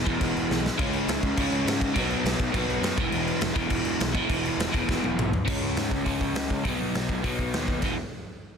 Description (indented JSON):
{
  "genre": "punk rock",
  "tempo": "205 BPM",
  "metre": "4/4",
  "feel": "straight",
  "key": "E major",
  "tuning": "A4 = 440 Hz",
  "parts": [
    { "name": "overdriven electric guitar", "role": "riff", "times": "0.0-8.0 s", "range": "E2 to C#4", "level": "-27 LUFS", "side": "equal", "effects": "none" },
    { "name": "fuzz picked electric bass", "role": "bass", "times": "0.1-8.0 s", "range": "E1 to G#2", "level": "-32 LUFS", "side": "equal", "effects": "overdrive" },
    { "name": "raw garage drum kit", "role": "drums", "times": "0.1-7.9 s", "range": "crash cymbal, hi-hat, kick drum, snare drum, toms", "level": "-28 LUFS", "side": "equal", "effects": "none" }
  ],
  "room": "light reverb",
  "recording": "dense, heavily limited modern master",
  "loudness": "-24 LUFS",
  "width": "side -6 dB against mid",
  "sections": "0.0-5.5 A section; 5.5-7.8 B section",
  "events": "drum fill 0.5, 4.9-5.5",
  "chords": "0.0 E5; 0.8 C#5; 2.0 B5; 3.0 E5; 5.5 C#5; 6.6 B; 7.8 E5"
}